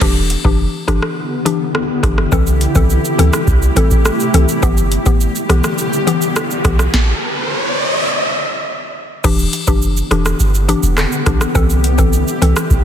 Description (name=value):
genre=dancehall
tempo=104 BPM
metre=4/4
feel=straight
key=E minor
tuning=A4 = 440 Hz
part: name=mallet-like synth pluck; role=accompaniment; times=0.0-12.6 s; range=E3 to A4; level=-18 LUFS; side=left 4 dB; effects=chorus
part: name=granular cloud pad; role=sustained chords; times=1.2-12.8 s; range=C3 to G4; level=-20 LUFS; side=left 1 dB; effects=built-in reverb, sidechain pumping
part: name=clean 808-style bass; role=bass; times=0.0-12.8 s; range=E1 to D2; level=-15 LUFS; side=right 1 dB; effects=none
part: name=booming analog drum machine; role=drums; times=0.0-12.8 s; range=crash cymbal, handclaps, hi-hat, kick drum, rim click, shaker, snare drum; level=-16 LUFS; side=right 1 dB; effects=none
part: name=riser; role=sound effects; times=6.0-8.1 s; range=none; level=-19 LUFS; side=equal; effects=none
room=light reverb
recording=dense, heavily limited modern master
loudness=-12 LUFS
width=side -9 dB against mid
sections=0.0-9.2 A section; 9.2-12.8 B section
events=riser 6.0-9.2; stop 6.9-9.2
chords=0.0 Em7; 2.3 C6; 4.6 G6; 6.9 N.C.; 9.2 Em7; 11.6 C6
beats=| 0.02 0.59 1.17 1.75 | 2.32 2.90 3.48 4.05 | 4.63 5.21 5.79 6.36 | 6.94 7.52 8.09 8.67 | 9.25 9.82 10.40 10.98 | 11.55 12.13 12.71